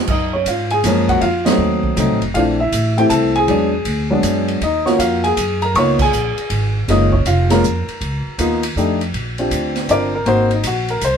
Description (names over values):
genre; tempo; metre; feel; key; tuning
jazz piano trio; 159 BPM; 3/4; swing 65% on 8ths; F# major; A4 = 441 Hz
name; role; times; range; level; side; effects
warm upright piano; melody; 0.0-11.2 s; E3 to C#6; -16 LUFS; left 1 dB; none
upright bass; bass; 0.0-11.2 s; F1 to G#2; -21 LUFS; right 1 dB; none
open jazz drum kit; drums; 0.1-11.1 s; crash cymbal, hi-hat, kick drum, ride cymbal, snare drum; -23 LUFS; right 3 dB; none
room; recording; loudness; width
moderate studio reverb, RT60 0.8 s; band playing live in one room; -14 LUFS; side -7 dB against mid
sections
0.1-9.1 A section; 9.1-11.2 B section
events
band accent 1.4, 5.9; upright piano solo 9.1-11.2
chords
0.1 F#maj7; 1.2 F7b9; 2.4 A#maj7(b5, no3); 3.5 E9; 4.6 D#m9; 5.8 C#5; 6.9 F#maj7; 8.0 C#13; 8.8 F13; 9.1 Bb69; 10.3 Ab9